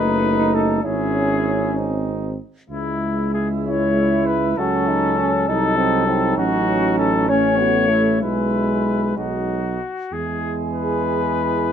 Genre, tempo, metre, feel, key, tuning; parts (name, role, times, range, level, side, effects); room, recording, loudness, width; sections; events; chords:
classical, brass quintet; 61-68 BPM (dotted quarters); 6/8; rubato; C# minor, E major from 6.4 s; A4 = 442 Hz
warm trumpet; melody; 0.0-11.7 s; E4 to C#5; -22 LUFS; left 6 dB
warm flugelhorn; second line; 0.0-11.7 s; C4 to G#4; -26 LUFS; right 9 dB
clear trombone; accompaniment; 0.0-11.7 s; G#3 to F#4; -24 LUFS; right 2 dB
mellow French horn; accompaniment; 0.0-11.7 s; F#3 to E4; -24 LUFS; left 3 dB
warm tuba; bass; 0.0-11.7 s; F#1 to E2; -24 LUFS; right 4 dB
light reverb; dark, warm production; -17 LUFS; side -8 dB against mid
0.0-10.1 A section; 10.1-11.7 B section
0.0 D#dim/F#; 0.8 C#m/G#; 1.8 G#; 2.7 C#m; 4.6 F#m6/C#; 5.5 Cdim7; 6.4 F#m/A; 8.2 E/B; 9.2 B; 10.1 E